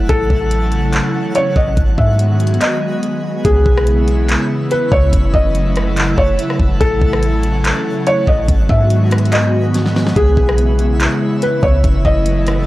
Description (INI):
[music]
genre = hip hop, atmospheric cloud-rap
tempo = 143 BPM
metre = 4/4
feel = half-time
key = C# minor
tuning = A4 = 439 Hz
[part]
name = airy breathy pad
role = sustained chords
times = 0.0-12.7 s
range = C#3 to F#4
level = -19 LUFS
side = equal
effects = chorus, sidechain pumping
[part]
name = clean 808-style bass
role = bass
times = 0.0-12.7 s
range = F#1 to G#2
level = -15 LUFS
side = equal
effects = none
[part]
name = twinkling granular texture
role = texture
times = 0.0-12.7 s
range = B3 to F#5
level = -28 LUFS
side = left 1 dB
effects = built-in reverb
[part]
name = felt-muted upright piano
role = melody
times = 0.1-12.7 s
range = G#4 to E5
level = -18 LUFS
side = left 1 dB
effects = analog delay
[part]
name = smooth R&B drum kit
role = drums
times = 0.1-12.6 s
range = handclaps, hi-hat, kick drum, rim click, snare drum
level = -17 LUFS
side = equal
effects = none
[sound]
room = little or no reverb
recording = dry, gritty hardware recording, transformer saturation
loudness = -12 LUFS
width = side -17 dB against mid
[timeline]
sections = 0.0-3.4 A section; 3.4-12.7 B section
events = break 2.6-3.4; drum fill 9.7-10.2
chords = 0.1 A6; 1.8 G#m7; 3.4 C#m7; 5.1 F#m7; 6.8 A6; 8.5 G#m7; 10.2 C#m7; 11.8 F#m7